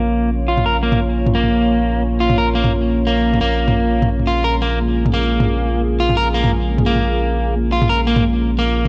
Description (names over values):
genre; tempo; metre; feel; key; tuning
half-time drum and bass; 174 BPM; 4/4; swing 53% on 16ths, half-time; Bb minor; A4 = 439 Hz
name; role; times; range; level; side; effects
deep dark ambient pad; sustained chords; 0.0-8.9 s; Bb3 to Db5; -23 LUFS; equal; chorus, built-in reverb
electric guitar at the edge of break-up; arpeggios; 0.0-8.9 s; Bb3 to Bb4; -21 LUFS; equal; low-pass filter, tape echo
saturated sub bass; bass; 0.0-8.9 s; Bb1; -22 LUFS; equal; none
electronic toms; drums; 0.6-8.9 s; none; -22 LUFS; equal; none
room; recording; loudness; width
light reverb, digital ambience; dry, gritty hardware recording, transformer saturation; -17 LUFS; mono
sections
0.0-8.9 A section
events
none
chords
0.0 Bbm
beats
0.31 | 0.66 1.00 1.34 1.69 | 2.03 2.38 2.72 3.07 | 3.41 3.76 4.10 4.45 | 4.79 5.14 5.48 5.83 | 6.17 6.52 6.86 7.21 | 7.55 7.90 8.24 8.59